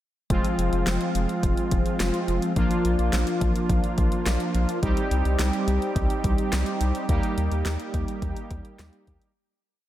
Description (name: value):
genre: synth-pop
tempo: 106 BPM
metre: 4/4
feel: straight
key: F dorian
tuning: A4 = 441 Hz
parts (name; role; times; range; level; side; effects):
- analog synth brass; accompaniment; 0.3-9.3 s; F3 to G4; -26 LUFS; equal; chorus
- round analog bass; bass; 0.3-9.2 s; F1 to Eb2; -25 LUFS; equal; none
- deep house drum kit; drums; 0.3-9.3 s; hi-hat, kick drum, snare drum; -27 LUFS; equal; none
room: moderate plate reverb, RT60 2.3 s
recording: dreamy mix soaked in reverb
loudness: -22 LUFS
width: side -13 dB against mid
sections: 0.3-9.4 verse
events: fade-out 7.1-9.4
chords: 0.3 Fm; 2.6 Bb; 4.8 Cm; 7.1 Eb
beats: | 0.30 0.87 1.43 2.00 | 2.56 3.13 3.70 4.26 | 4.83 5.39 5.96 6.53 | 7.09 7.66 8.22 8.79